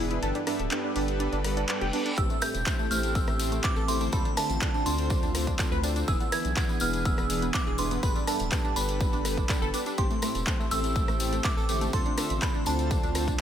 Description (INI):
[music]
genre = progressive house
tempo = 123 BPM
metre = 4/4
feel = straight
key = A minor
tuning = A4 = 440 Hz
[part]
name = airy breathy pad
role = sustained chords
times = 0.0-13.4 s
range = D3 to B4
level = -36 LUFS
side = right 2 dB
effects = chorus, sidechain pumping
[part]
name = tight sequenced synth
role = arpeggios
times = 0.0-13.3 s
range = A3 to B4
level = -35 LUFS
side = right 1 dB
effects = chorus, sidechain pumping, ping-pong delay
[part]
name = soft supersaw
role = stabs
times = 0.0-13.3 s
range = G2 to E5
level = -33 LUFS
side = left 2 dB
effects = sidechain pumping, ping-pong delay
[part]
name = round analog bass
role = bass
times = 0.0-13.4 s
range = D1 to D2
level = -32 LUFS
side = equal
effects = sidechain pumping
[part]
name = house drum kit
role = drums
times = 0.1-13.4 s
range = handclaps, hi-hat, rim click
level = -34 LUFS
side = equal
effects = none
[part]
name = reverse cymbal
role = sound effects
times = 1.4-2.2 s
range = none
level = -39 LUFS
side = right 2 dB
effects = none
[part]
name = glassy synth bell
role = melody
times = 2.2-13.4 s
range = A5 to G#6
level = -33 LUFS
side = right 2 dB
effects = chorus, tremolo, ping-pong delay
[part]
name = electronic kick drum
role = drums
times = 2.2-13.4 s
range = none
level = -28 LUFS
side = equal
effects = none
[part]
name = tambourine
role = percussion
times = 2.2-13.4 s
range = none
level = -39 LUFS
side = left 3 dB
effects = none
[sound]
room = little or no reverb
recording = none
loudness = -25 LUFS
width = side -9 dB against mid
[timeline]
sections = 0.0-13.4 A section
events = kick drops out 0.2-2.2; reverse cymbal 1.4-2.2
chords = 0.2 Gadd9; 2.2 Am7; 4.1 Dm7; 6.1 E7; 8.0 Gadd9; 10.0 Am7; 11.9 Dm7